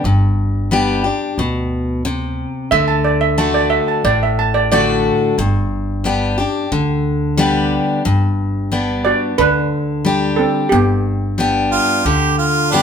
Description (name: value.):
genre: honky-tonk and classic country.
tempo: 90 BPM.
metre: 4/4.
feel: straight.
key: G major.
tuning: A4 = 440 Hz.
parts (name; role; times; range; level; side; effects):
steel pan; melody; 0.0-12.7 s; B3 to A5; -16 LUFS; right 5 dB; none.
picked steel-string acoustic guitar; accompaniment; 0.0-12.8 s; G2 to G4; -16 LUFS; left 2 dB; none.
upright bass; bass; 0.0-12.8 s; G1 to D2; -22 LUFS; equal; none.
bright harmonica; second line; 11.7-12.8 s; D4 to G4; -15 LUFS; right 4 dB; none.
room: moderate large studio reverb, RT60 0.9 s.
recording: band playing live in one room.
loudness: -14 LUFS.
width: side -7 dB against mid.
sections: 0.0-8.1 A section; 8.1-12.8 B section.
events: steel pan solo 0.0-8.1.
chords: 0.0 G; 2.7 D; 5.4 G.